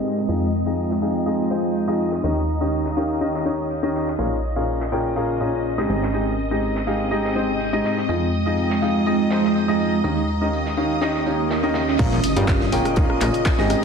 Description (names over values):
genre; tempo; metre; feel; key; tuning
piano house; 123 BPM; 4/4; straight; unclear; A4 = 440 Hz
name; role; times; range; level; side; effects
string machine, violins; sustained chords; 0.0-13.8 s; Eb5 to Eb6; -30 LUFS; equal; ensemble chorus, sidechain pumping
clear baby grand piano; riff; 0.0-13.8 s; Ab2 to G5; -22 LUFS; left 1 dB; sidechain pumping, ping-pong delay
big rock drum kit; drums; 0.0-13.8 s; hi-hat, snare drum, tambourine; -35 LUFS; right 1 dB; sidechain pumping on hats, high-pass filter on hats, low-pass filter on hats, high-pass filter on snare, low-pass filter on snare, sidechain pumping on perc, high-pass filter on perc, low-pass filter on perc, high-pass filter on room, low-pass filter on room
downlifter, swell and impact; sound effects; 0.0-0.3, 11.2-13.8 s; none; -29 LUFS; right 1 dB; none
granular cloud pad; texture; 0.0-13.8 s; Ab3 to G5; -25 LUFS; right 2 dB; built-in reverb, sidechain pumping
plucky analog bass; bass; 0.3-13.8 s; Ab1 to G2; -27 LUFS; equal; sidechain pumping
electronic kick drum; drums; 12.0-13.6 s; none; -21 LUFS; equal; none
punchy analog drum machine; drums; 12.0-13.8 s; crash cymbal, handclaps, hi-hat, rim click; -28 LUFS; left 1 dB; overdrive, low-pass filter on hats, low-pass filter on snare, low-pass filter on cymbals
room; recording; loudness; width
moderate lush hall reverb, RT60 2.0 s, small room reverb; low-pass filter; -19 LUFS; side -6 dB against mid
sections
0.0-12.0 A section; 12.0-13.8 B section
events
filter sweep 0.0-12.0; swell 11.2-12.0; drop 12.0-13.8; impact 12.0-13.8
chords
0.3 Fm7; 2.2 Eb7; 4.2 Bbm7; 5.9 Abmaj7; 8.1 Fm7; 10.0 Eb7; 12.0 Bbm7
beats
| 0.28 0.77 1.26 1.75 | 2.24 2.72 3.21 3.70 | 4.19 4.67 5.16 5.65 | 6.14 6.63 7.11 7.60 | 8.09 8.58 9.06 9.55 | 10.04 10.53 11.02 11.50 | 11.99 12.48 12.97 13.46